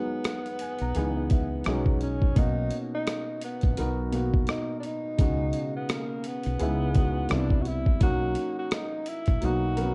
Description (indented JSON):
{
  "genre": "lo-fi hip hop",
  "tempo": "85 BPM",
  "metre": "4/4",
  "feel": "swing 58% on 16ths",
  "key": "B major",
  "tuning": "A4 = 440 Hz",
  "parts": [
    { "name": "mellow tenor saxophone", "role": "melody", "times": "0.0-9.9 s", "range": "A#3 to F#4", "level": "-35 LUFS", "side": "equal", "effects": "low-pass filter" },
    { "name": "dark upright piano", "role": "accompaniment", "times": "0.0-9.9 s", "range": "B2 to A#5", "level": "-33 LUFS", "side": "equal", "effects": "cassette tape, low-pass filter, plate reverb" },
    { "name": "boom bap sampler-style drum kit", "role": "drums", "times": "0.2-9.9 s", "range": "hi-hat, kick drum, rim click", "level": "-28 LUFS", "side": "equal", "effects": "none" },
    { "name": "woody fretless electric bass", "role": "bass", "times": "0.8-9.9 s", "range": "A#1 to C#2", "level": "-32 LUFS", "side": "equal", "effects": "lush chorus" }
  ],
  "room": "light reverb",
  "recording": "dark, warm production",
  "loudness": "-27 LUFS",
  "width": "mono",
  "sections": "0.0-2.4 A section; 2.4-9.9 A section",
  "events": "none",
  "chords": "0.0 C#9sus4 (rootless); 1.0 C#m7; 1.7 B69; 2.4 Bmaj7; 5.2 C#9sus4; 6.6 C#m7; 7.3 Cmaj7; 8.0 Bmaj7; 9.4 Bmaj9",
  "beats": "0.25 0.95 1.66 | 2.36 3.07 3.78 4.48 | 5.19 5.89 6.60 7.30 | 8.01 8.72 9.42"
}